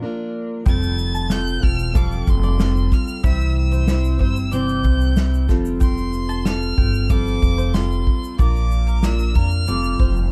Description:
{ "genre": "acoustic pop", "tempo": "93 BPM", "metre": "4/4", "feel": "straight", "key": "F major", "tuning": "A4 = 435 Hz", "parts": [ { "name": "fingerpicked plugged-in steel-string acoustic guitar", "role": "accompaniment", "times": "0.0-10.3 s", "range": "Bb2 to C5", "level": "-27 LUFS", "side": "equal", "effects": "double-tracked" }, { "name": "clear violin", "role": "melody", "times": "0.7-10.3 s", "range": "C6 to A6", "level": "-32 LUFS", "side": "equal", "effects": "none" }, { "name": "bowl-back mandolin", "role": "arpeggios", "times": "0.7-10.1 s", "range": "Bb4 to A5", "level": "-36 LUFS", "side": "equal", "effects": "none" }, { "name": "upright bass", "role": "bass", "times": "0.7-10.3 s", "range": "E1 to F2", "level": "-22 LUFS", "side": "equal", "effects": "none" }, { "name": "unplugged drum kit", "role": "drums", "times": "0.7-10.3 s", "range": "kick drum, shaker, snare drum", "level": "-22 LUFS", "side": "equal", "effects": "none" } ], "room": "studio reverb", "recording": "dark, warm production", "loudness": "-19 LUFS", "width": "mono", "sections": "0.0-10.3 A section", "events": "none", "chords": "0.0 Bb; 0.7 Fadd9; 3.2 C; 5.5 Fadd9; 8.4 Bb; 9.7 Fadd9" }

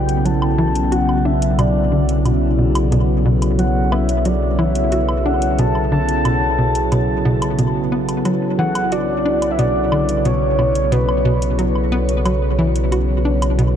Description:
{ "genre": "ambient, sequencer-driven space music", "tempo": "90 BPM", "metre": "4/4", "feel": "straight", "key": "B minor", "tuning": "A4 = 441 Hz", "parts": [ { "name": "soft octave-layered synth lead", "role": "melody", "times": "0.0-11.9 s", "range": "B4 to A5", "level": "-22 LUFS", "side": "equal", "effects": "chorus, shimmer reverb, analog delay" }, { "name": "sweeping resonant pad", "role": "sustained chords", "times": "0.0-13.8 s", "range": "C#3 to A4", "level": "-20 LUFS", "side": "equal", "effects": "chorus, phaser, shimmer reverb" }, { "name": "hollow square pluck", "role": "riff", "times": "0.0-13.8 s", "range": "B2 to F#4", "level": "-21 LUFS", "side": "equal", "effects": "chorus, shimmer reverb, analog delay" }, { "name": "warm sub bass", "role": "bass", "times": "0.0-13.8 s", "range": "B1", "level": "-20 LUFS", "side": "equal", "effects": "none" }, { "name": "electronic hi-hat and woodblock", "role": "percussion", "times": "0.1-13.7 s", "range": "none", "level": "-31 LUFS", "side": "equal", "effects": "analog delay" } ], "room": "moderate huge ambient reverb, RT60 9.1 s", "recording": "dark, warm production", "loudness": "-15 LUFS", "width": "side -9 dB against mid", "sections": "0.0-13.8 A section", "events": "none", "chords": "0.0 Bm7" }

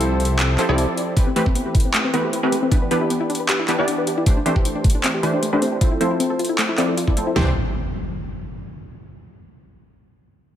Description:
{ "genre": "future bass", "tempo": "155 BPM", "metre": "4/4", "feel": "half-time", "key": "C major", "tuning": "A4 = 440 Hz", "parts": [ { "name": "clear grand piano", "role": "accompaniment", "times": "0.0-1.2 s", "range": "C4 to A4", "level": "-28 LUFS", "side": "left 3 dB", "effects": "sidechain pumping, tape echo" }, { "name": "supersaw stab", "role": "riff", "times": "0.0-7.5 s", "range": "E3 to D5", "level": "-22 LUFS", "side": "right 1 dB", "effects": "cassette tape, sidechain pumping, low-pass filter, tape echo" }, { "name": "fat analog bass", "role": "bass", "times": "0.0-0.9, 7.4-7.5 s", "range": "C2", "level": "-20 LUFS", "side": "equal", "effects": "tube saturation, sidechain pumping" }, { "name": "trap drum kit", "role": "drums", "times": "0.0-7.2 s", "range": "handclaps, hi-hat", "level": "-24 LUFS", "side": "equal", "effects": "overdrive, studio reverb" }, { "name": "soft round pluck", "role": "arpeggios", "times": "1.2-7.5 s", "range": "A3 to B4", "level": "-25 LUFS", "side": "left 3 dB", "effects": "chorus, sidechain pumping, tape echo" }, { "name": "dubstep drum kit", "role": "drums", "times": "1.2-7.5 s", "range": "kick drum, snare drum, toms", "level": "-18 LUFS", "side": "equal", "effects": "overdrive, studio reverb" }, { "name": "impact", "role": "sound effects", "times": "7.4-8.9 s", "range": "none", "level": "-28 LUFS", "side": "equal", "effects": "none" } ], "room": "light reverb, digital ambience", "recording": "none", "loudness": "-17 LUFS", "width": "side -10 dB against mid", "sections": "0.0-7.4 A section; 7.4-8.9 B section", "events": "filter sweep on supersaw synth 0.0-7.4", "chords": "0.0 Fmaj7/C; 1.2 Am9; 2.7 Em7; 4.3 C69; 5.8 Fmaj7; 7.4 C69" }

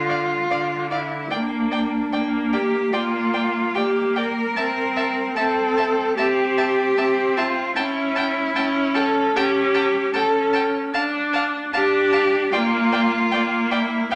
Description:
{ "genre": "classical, slow romantic movement for string quartet", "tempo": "75 BPM", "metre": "4/4", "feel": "rubato", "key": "unclear", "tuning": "A4 = 440 Hz", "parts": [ { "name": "rich viola", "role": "accompaniment", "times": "0.0-14.2 s", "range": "D3 to D4", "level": "-26 LUFS", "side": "equal", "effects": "none" }, { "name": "rich cello", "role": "bass", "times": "0.0-14.1 s", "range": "D4 to Bb4", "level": "-24 LUFS", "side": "equal", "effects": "none" }, { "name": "warm violin", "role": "melody", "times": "0.1-14.2 s", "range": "F5 to A5", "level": "-31 LUFS", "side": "equal", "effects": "none" }, { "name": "rich violin", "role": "second line", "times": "0.1-14.2 s", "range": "D5 to G5", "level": "-33 LUFS", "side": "equal", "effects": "none" } ], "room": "wet stone room reverb, RT60 1.1 s", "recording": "none", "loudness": "-21 LUFS", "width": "mono", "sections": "0.0-14.2 A section", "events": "none", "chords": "0.0 Dm; 1.3 Gm/Bb; 4.6 C5; 7.8 A7/C#; 10.9 Dm; 12.5 Gm7/Bb" }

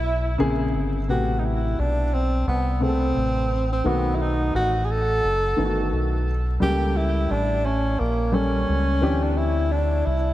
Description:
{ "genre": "hip hop", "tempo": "87 BPM", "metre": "4/4", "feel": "swing 60% on 16ths", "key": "A dorian", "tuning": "A4 = 438 Hz", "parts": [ { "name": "breathy tenor saxophone", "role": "melody", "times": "0.0-10.3 s", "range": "Bb3 to A4", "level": "-25 LUFS", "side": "right 1 dB", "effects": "diffuse ambient delay" }, { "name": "deep dub fingered electric bass", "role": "bass", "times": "0.0-10.3 s", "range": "F#1 to D2", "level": "-24 LUFS", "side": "equal", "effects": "none" }, { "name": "dark baby grand piano", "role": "accompaniment", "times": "0.4-10.1 s", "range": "C3 to B4", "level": "-26 LUFS", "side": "left 2 dB", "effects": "none" } ], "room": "moderate lush hall reverb, RT60 2.7 s", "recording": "dreamy mix soaked in reverb, vinyl crackle", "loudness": "-20 LUFS", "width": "side -14 dB against mid", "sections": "0.0-1.1 A section; 1.1-10.3 B section", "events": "tenor saxophone solo 0.0-1.1", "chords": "0.4 Bbm9; 1.1 Am9; 3.8 B7; 6.6 A7b9; 9.0 D9sus4" }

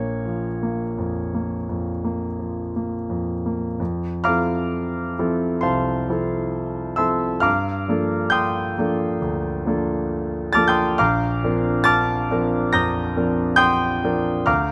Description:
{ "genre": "classical, impressionist solo piano", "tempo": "67 BPM", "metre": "4/4", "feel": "uneven beats, rubato", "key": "unclear", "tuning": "A4 = 436 Hz", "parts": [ { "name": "clear concert grand piano", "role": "solo", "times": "0.0-14.7 s", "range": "Bb1 to Bb6", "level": "-22 LUFS", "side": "equal", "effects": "none" } ], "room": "light reverb", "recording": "close, detailed microphones", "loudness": "-22 LUFS", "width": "mono", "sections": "0.0-3.8 A section; 3.8-14.7 B section", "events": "none", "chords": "0.0 Bbm; 3.8 Fmaj7; 7.5 Gm9; 11.0 Bbadd9" }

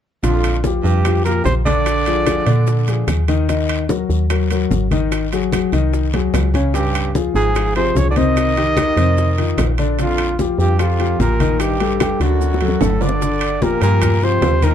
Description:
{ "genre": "Afro-Cuban jazz", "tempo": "148 BPM", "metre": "4/4", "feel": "straight", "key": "Bb major", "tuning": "A4 = 440 Hz", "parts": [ { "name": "breathy trumpet", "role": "melody", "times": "0.2-3.2, 6.7-14.7 s", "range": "F4 to Eb5", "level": "-21 LUFS", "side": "right 1 dB", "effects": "plate reverb" }, { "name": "clear baritone saxophone", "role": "second line", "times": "0.2-3.2, 6.8-14.7 s", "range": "F2 to Eb3", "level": "-24 LUFS", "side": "right 7 dB", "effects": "none" }, { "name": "warm concert grand piano", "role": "accompaniment", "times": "0.2-14.7 s", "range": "C3 to Eb5", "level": "-20 LUFS", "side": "left 6 dB", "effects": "none" }, { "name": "woody FM bass", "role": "bass", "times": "0.2-14.7 s", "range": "G1 to Bb2", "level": "-18 LUFS", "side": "equal", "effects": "none" }, { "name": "bongos", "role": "percussion", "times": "0.2-14.6 s", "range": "none", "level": "-26 LUFS", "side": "left 8 dB", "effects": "none" }, { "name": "congas", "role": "percussion", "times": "0.2-14.7 s", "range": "none", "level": "-24 LUFS", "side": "left 1 dB", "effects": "none" }, { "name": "guiro", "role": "percussion", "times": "0.2-14.7 s", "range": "none", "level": "-36 LUFS", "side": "left 7 dB", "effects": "none" }, { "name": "maracas", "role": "percussion", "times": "0.2-14.7 s", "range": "none", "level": "-37 LUFS", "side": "right 8 dB", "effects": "none" }, { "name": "timbales", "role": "percussion", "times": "0.2-14.7 s", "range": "none", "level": "-28 LUFS", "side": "right 9 dB", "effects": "none" }, { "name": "claves", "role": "percussion", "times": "0.4-14.2 s", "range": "none", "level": "-36 LUFS", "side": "left 7 dB", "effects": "none" } ], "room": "light reverb", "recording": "dark, warm production", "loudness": "-14 LUFS", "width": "side -9 dB against mid", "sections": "0.2-13.2 A section; 13.2-14.7 B section", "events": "drum fill 6.1-6.7, 12.4-13.2", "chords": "0.2 Bb6; 1.9 Bb7; 3.5 Ebmadd11; 5.1 Ab7; 6.7 Dbmaj7; 8.4 Cm; 9.2 F5; 10.0 Bb6; 11.6 Ebmaj7#11/A; 12.4 D; 13.2 Gm7" }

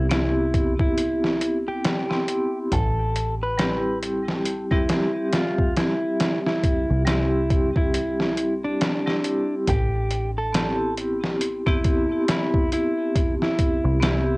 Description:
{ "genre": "trip hop", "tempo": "69 BPM", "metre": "4/4", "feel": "swing 59% on 16ths", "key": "A minor", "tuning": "A4 = 440 Hz", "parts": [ { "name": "clean electric guitar", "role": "melody", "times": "0.0-14.4 s", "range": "D4 to B4", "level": "-26 LUFS", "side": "equal", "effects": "vintage 12-bit sampler grit, cassette tape" }, { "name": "vibraphone with hard mallets", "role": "accompaniment", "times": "0.0-14.4 s", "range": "G3 to E5", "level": "-26 LUFS", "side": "equal", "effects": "tremolo, vintage 12-bit sampler grit, tape echo" }, { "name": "deep dub fingered electric bass", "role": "bass", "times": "0.0-14.4 s", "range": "A1 to C2", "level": "-26 LUFS", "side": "equal", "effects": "tube saturation" }, { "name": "trip hop sampler-style drum kit", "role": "drums", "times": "0.1-14.3 s", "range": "hi-hat, kick drum, snare drum", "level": "-23 LUFS", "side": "equal", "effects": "overdrive, cassette tape" } ], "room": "light reverb", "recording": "home recording on cassette", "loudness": "-20 LUFS", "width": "side -24 dB against mid", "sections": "0.0-14.4 A section", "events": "none", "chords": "0.0 Am7 (rootless); 2.7 C/A; 9.7 Am7" }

